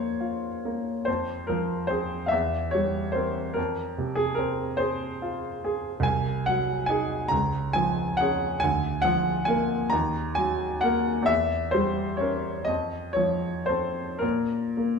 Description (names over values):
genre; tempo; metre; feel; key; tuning
classical, romantic nocturne for solo piano; 37-50 BPM (dotted quarters); 6/8; rubato; unclear; A4 = 440 Hz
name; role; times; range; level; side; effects
clear baby grand piano; solo; 0.0-15.0 s; C2 to Bb5; -24 LUFS; equal; none
room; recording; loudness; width
wet large studio reverb, RT60 1.1 s; heard from further back in the room, lossy compression artefacts; -24 LUFS; side -5 dB against mid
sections
0.0-15.0 A section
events
none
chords
0.0 Bbm; 1.1 Fm; 2.3 C7/E; 3.6 Fm; 6.1 Ab7/C; 7.3 Db; 8.6 Bb/D; 9.9 Ebm; 11.3 Edim7; 12.7 F; 14.2 N.C.